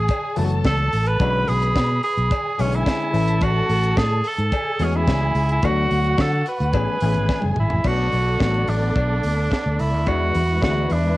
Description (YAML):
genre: disco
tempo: 108 BPM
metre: 4/4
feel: straight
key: B dorian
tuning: A4 = 440 Hz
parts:
  - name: bright alto saxophone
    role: melody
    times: 0.0-11.2 s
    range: C#4 to B4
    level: -23 LUFS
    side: right 1 dB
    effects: cassette tape
  - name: dark studio string section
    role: second line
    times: 0.0-11.2 s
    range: G#3 to B5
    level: -29 LUFS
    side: equal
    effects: plate reverb
  - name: fingered electric bass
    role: bass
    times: 0.0-11.1 s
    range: F#1 to D3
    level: -21 LUFS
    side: equal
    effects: none
  - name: tight funk drum kit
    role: drums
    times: 0.1-11.0 s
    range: crash cymbal, hi-hat, kick drum, snare drum, toms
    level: -25 LUFS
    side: equal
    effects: none
  - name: cowbell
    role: percussion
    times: 0.1-10.8 s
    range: none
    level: -34 LUFS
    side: left 7 dB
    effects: none
  - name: mellow clav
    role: accompaniment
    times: 0.4-11.2 s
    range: C#3 to A4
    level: -27 LUFS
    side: left 6 dB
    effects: none
room: light reverb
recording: home recording on cassette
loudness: -18 LUFS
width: side -18 dB against mid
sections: 0.0-7.9 A section; 7.9-11.2 B section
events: drum fill 7.3-7.9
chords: 0.0 F#m11; 1.2 Bm69; 3.1 Amaj7; 5.6 D6; 6.7 Amaj9; 7.9 Bm7; 10.1 E7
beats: 0.09 0.65 | 1.20 1.75 2.31 2.86 | 3.42 3.97 4.53 5.08 | 5.63 6.19 6.74 7.30 | 7.85 8.41 8.96 9.52 | 10.07 10.63